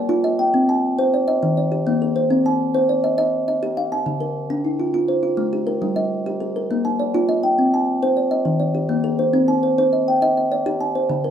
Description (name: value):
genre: southern african traditional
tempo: 136 BPM (dotted quarters)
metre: 12/8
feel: straight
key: C equiheptatonic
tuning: A4 = 439 Hz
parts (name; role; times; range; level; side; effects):
- kalimba; solo; 0.0-11.3 s; D3-29c to A5-43c; -17 LUFS; equal; none
room: moderate studio reverb, RT60 0.6 s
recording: none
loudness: -17 LUFS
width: side -8 dB against mid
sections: 0.0-9.3 A section; 9.3-11.3 B section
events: none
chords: 0.0 Bb (rootless); 0.5 Cm; 1.4 Eb; 2.3 Cm; 4.1 Dm; 5.8 Gm; 6.7 Bb; 7.6 Cm; 8.5 Eb; 9.3 Cm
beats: 0.10 | 0.54 0.98 1.42 1.86 | 2.30 2.74 3.18 3.62 | 4.06 4.50 4.94 5.38 | 5.82 6.26 6.70 7.14 | 7.58 8.02 8.46 8.90 | 9.34 9.77 10.21 10.65 | 11.09